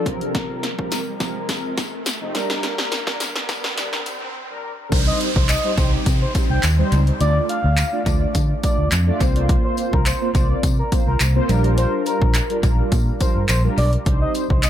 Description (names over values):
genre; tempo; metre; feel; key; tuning
dance-pop; 105 BPM; 4/4; straight; C dorian; A4 = 440 Hz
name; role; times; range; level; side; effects
mellow synth brass; accompaniment; 0.0-14.4 s; C3 to D5; -25 LUFS; equal; chorus, sidechain pumping, analog delay
riser and downlifter; sound effects; 0.0-9.5 s; none; -31 LUFS; right 2 dB; none
punchy analog drum machine; drums; 0.1-14.7 s; crash cymbal, handclaps, hi-hat, kick drum, snare drum; -21 LUFS; equal; analog delay
tambourine; percussion; 0.9-14.7 s; none; -34 LUFS; left 9 dB; none
vintage muted fingered electric bass; bass; 4.9-14.7 s; Bb1 to D3; -19 LUFS; equal; sidechain pumping
expressive synth lead; melody; 5.1-14.7 s; Bb4 to G5; -26 LUFS; equal; chorus, sidechain pumping, analog delay
room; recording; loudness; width
light reverb; echo-heavy mix, high-pass filter; -17 LUFS; side -11 dB against mid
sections
0.0-4.9 A section; 4.9-14.7 B section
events
build-up 0.0-4.9; drum fill 0.0-4.3; riser 0.0-4.9; filter sweep 0.0-4.9; break 4.3-4.9; drop 4.9-14.7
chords
0.1 Fsus4/C; 2.3 Bb6; 4.9 Cm; 7.2 Dm; 9.2 Fsus4/C; 11.5 Bb6; 14.1 Cm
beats
| 0.35 0.92 1.49 2.06 | 2.63 3.21 3.78 4.35 | 4.92 5.49 6.06 6.63 | 7.21 7.78 8.35 8.92 | 9.49 10.06 10.63 11.21 | 11.78 12.35 12.92 13.49 | 14.06 14.63